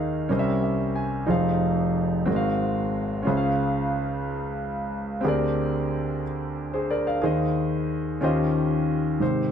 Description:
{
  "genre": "gospel",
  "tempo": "61 BPM (dotted quarters)",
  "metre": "6/8",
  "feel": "straight",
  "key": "Ab major",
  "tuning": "A4 = 440 Hz",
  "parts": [
    { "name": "warm grand piano", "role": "solo", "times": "0.0-9.5 s", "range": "F1 to Ab5", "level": "-22 LUFS", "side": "equal", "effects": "none" }
  ],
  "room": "light reverb",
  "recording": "dark, warm production",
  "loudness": "-22 LUFS",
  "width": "side -8 dB against mid",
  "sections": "0.0-9.2 A section",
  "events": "grand piano fill 0.3-1.3",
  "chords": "0.3 C7b9; 1.3 Fm7; 2.3 Ab13; 3.3 Dbmaj7; 5.2 Bb13/D; 7.2 Ab/Eb; 8.2 Eb13",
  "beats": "0.30 | 1.29 2.28 | 3.27 4.26 | 5.25 6.24 | 7.23 8.22 | 9.21"
}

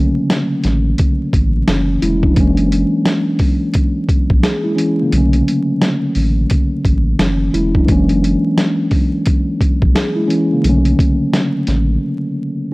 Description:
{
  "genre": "hip hop, boom-bap hip-hop",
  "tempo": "87 BPM",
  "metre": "4/4",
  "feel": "swing 60% on 16ths",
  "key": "B dorian",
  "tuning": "A4 = 441 Hz",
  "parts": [
    { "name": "mellow tine electric piano", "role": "accompaniment", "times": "0.0-12.7 s", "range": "C#3 to G#4", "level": "-16 LUFS", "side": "equal", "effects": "medium stereo tremolo, high-pass filter, low-pass filter" },
    { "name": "boom bap sampler-style drum kit", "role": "drums", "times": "0.3-11.9 s", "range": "hi-hat, kick drum, snare drum", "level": "-15 LUFS", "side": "equal", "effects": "vintage 12-bit sampler grit" },
    { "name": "saturated sub bass", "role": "bass", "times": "0.6-12.0 s", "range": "E1 to B1", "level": "-16 LUFS", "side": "equal", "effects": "none" }
  ],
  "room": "little or no reverb",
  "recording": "dry, gritty hardware recording, transformer saturation, vinyl crackle",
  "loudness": "-13 LUFS",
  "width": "side -22 dB against mid",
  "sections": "0.0-12.7 A section",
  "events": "break 12.0-12.7",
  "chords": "0.0 Bm9 (rootless); 2.4 F#9; 5.1 Bm9 (rootless); 7.9 F#9; 10.6 Bm9",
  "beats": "0.30 0.99 1.68 | 2.37 3.06 3.75 4.44 | 5.13 5.82 6.51 7.20 | 7.88 8.57 9.26 9.95 | 10.64 11.33 12.02 12.71"
}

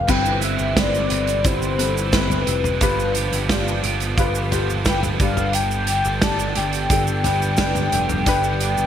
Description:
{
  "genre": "piano-driven pop",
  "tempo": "88 BPM",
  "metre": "4/4",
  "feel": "straight",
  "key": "G mixolydian",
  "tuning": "A4 = 440 Hz",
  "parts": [
    { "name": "mellow horn-like synth lead", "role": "melody", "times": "0.0-8.9 s", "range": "B4 to A5", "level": "-24 LUFS", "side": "left 2 dB", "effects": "chorus" },
    { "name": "warm concert grand piano", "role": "accompaniment", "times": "0.0-8.9 s", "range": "G2 to D5", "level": "-25 LUFS", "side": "left 4 dB", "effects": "analog chorus" },
    { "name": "modern bright picked electric bass", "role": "bass", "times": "0.0-8.9 s", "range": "F1 to G1", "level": "-24 LUFS", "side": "right 1 dB", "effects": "none" },
    { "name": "cranked stack guitar", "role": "riff", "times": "0.1-8.9 s", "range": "G2 to B4", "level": "-26 LUFS", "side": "right 6 dB", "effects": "overdrive, ensemble chorus" },
    { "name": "loose indie drum kit", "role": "drums", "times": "0.1-8.8 s", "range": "crash cymbal, hi-hat, kick drum, snare drum, toms", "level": "-23 LUFS", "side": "right 1 dB", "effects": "gated reverb" },
    { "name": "tube shaker", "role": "percussion", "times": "0.1-8.9 s", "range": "none", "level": "-35 LUFS", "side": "right 9 dB", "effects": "none" }
  ],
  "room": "light reverb, small room ambience",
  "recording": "bright 1980s-style digital production",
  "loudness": "-17 LUFS",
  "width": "side -9 dB against mid",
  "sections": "0.1-8.9 A section",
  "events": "none",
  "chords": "0.1 Cmaj7/G; 2.8 G7; 5.2 G",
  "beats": "| 0.09 0.77 1.45 2.13 | 2.81 3.50 4.18 4.86 | 5.54 6.23 6.91 7.59 | 8.27"
}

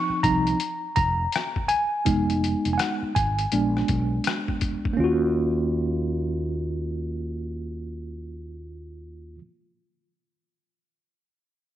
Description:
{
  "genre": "hip hop, jazz-hop",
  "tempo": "82 BPM",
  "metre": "4/4",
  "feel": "swing 62% on 16ths",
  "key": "Eb minor",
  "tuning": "A4 = 439 Hz",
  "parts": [
    { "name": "mellow tine electric piano", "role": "accompaniment", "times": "0.0-9.4 s", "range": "F3 to Db6", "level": "-25 LUFS", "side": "right 1 dB", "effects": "medium stereo tremolo" },
    { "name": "fretless electric bass", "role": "bass", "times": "0.1-9.4 s", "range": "F1 to Eb2", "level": "-28 LUFS", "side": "equal", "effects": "none" },
    { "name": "trip hop sampler-style drum kit", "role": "drums", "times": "0.2-5.0 s", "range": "hi-hat, kick drum, rim click", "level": "-28 LUFS", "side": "left 3 dB", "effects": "none" }
  ],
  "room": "light reverb",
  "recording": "1960s-style stereo",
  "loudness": "-22 LUFS",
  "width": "side -12 dB against mid",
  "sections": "0.0-5.0 A section; 5.0-7.9 B section",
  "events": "tine electric piano solo 0.0-5.0",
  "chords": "0.0 Dbmaj9 (rootless); 2.1 Fm7b5; 3.5 Bb7b9; 5.0 Ebm9",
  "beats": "0.60 1.33 | 2.06 2.80 3.53 4.26 | 4.99 5.72 6.46 7.19"
}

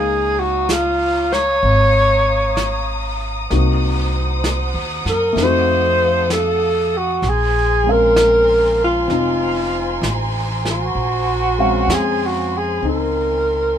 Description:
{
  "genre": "jazz",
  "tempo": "64 BPM",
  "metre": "4/4",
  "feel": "swing 67% on 8ths",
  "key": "Bb minor",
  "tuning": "A4 = 438 Hz",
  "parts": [
    { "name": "breathy alto saxophone", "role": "melody", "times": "0.0-13.8 s", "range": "F4 to Db5", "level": "-16 LUFS", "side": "equal", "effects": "none" },
    { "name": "warm grand piano", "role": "accompaniment", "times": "0.0-13.8 s", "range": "Ab3 to F5", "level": "-24 LUFS", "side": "left 4 dB", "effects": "none" },
    { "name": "warm studio string section", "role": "sustained chords", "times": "0.0-13.8 s", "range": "A4 to Eb6", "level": "-26 LUFS", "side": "left 1 dB", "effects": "none" },
    { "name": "upright bass", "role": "bass", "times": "0.0-13.8 s", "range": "F1 to Gb2", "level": "-21 LUFS", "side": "equal", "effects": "none" },
    { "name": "vintage brush drum kit", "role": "drums", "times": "0.7-13.8 s", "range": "brushed snare drum, hi-hat, snare drum", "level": "-27 LUFS", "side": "right 1 dB", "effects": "none" }
  ],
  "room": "light reverb",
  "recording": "minimal, uncompressed stereo recording",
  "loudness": "-15 LUFS",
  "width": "side -9 dB against mid",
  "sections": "0.0-13.8 A section",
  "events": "none",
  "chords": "0.0 Db69; 3.5 Cm7b5; 5.4 F7b9; 7.2 Bbm9",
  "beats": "0.69 1.63 2.57 | 3.50 4.43 5.37 6.30 | 7.23 8.16 9.09 10.02 | 10.95 11.88 12.82 13.78"
}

